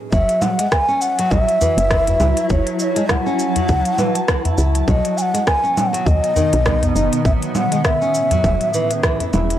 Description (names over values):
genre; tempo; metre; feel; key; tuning
organic downtempo; 101 BPM; 4/4; swing 57% on 16ths; F# dorian; A4 = 437 Hz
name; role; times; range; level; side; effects
breathy mellow low ney; melody; 0.1-9.3 s; C#5 to G#5; -19 LUFS; equal; tape echo
granular cloud pad; sustained chords; 0.6-9.6 s; A2 to A5; -24 LUFS; equal; built-in reverb, sidechain pumping
nylon-string guitar; arpeggios; 0.1-9.6 s; D#3 to E4; -24 LUFS; equal; tape echo
woody FM bass; bass; 0.1-9.6 s; E1 to D#2; -19 LUFS; equal; none
electronic kick drum; drums; 0.1-9.2 s; none; -19 LUFS; equal; none
organic electronic drum kit; drums; 0.1-9.6 s; congas, hi-hat, rim click, shaker; -23 LUFS; right 1 dB; none
udu; percussion; 1.6-9.3 s; none; -22 LUFS; left 1 dB; none
room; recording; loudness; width
light reverb; dry, gritty hardware recording, transformer saturation, cassette tape; -15 LUFS; side -12 dB against mid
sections
0.1-9.6 A section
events
none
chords
0.1 F#m7; 4.9 B7; 7.3 Amaj7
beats
| 0.13 0.72 1.31 1.91 | 2.50 3.10 3.69 4.29 | 4.88 5.47 6.07 6.66 | 7.25 7.85 8.44 9.04